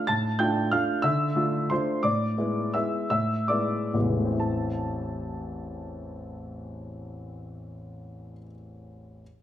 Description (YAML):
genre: classical, piano waltz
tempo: 118-188 BPM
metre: 3/4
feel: rubato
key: A minor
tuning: A4 = 440 Hz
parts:
  - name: warm grand piano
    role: solo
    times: 0.0-9.2 s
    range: A1 to A6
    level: -26 LUFS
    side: equal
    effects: none
room: moderate recital hall reverb, RT60 1.2 s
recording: minimal, uncompressed stereo recording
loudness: -24 LUFS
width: side -11 dB against mid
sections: 0.0-4.4 A section; 4.4-7.1 B section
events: slowing down 1.5-4.4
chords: 0.0 Dm/A; 2.0 E7/A; 4.4 Am